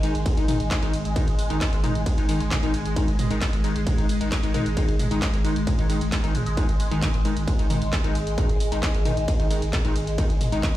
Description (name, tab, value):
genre	driving peak-time techno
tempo	133 BPM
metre	4/4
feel	straight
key	unclear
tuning	A4 = 441 Hz
part	overdriven synth lead	riff	0.0-10.7 s	G#3	-30 LUFS	equal	distortion, phaser, ensemble chorus, cassette tape, sidechain pumping, ping-pong delay
part	wavetable chord stab	stabs	0.0-10.7 s	D#3 to D#4	-29 LUFS	left 2 dB	phaser, sidechain pumping, dub echo
part	saturated sub bass	bass	0.0-10.8 s	G#1	-29 LUFS	equal	overdrive, sidechain pumping, low-pass filter
part	punchy analog drum machine	drums	0.0-10.7 s	handclaps, hi-hat, ride cymbal, toms	-30 LUFS	equal	sidechain pumping on hats, sidechain pumping on toms, sidechain pumping on cymbals
part	electronic kick drum	drums	0.3-10.7 s	none	-24 LUFS	equal	distortion
room	light reverb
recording	played on a big sound system in a bare room, stone room reverb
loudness	-21 LUFS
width	side -14 dB against mid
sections	0.0-10.8 A section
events	none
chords	0.0 G#5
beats	0.26 0.71 | 1.16 1.61 2.06 2.51 | 2.96 3.42 3.87 4.32 | 4.77 5.22 5.67 6.12 | 6.57 7.02 7.47 7.93 | 8.38 8.83 9.28 9.73 | 10.18 10.63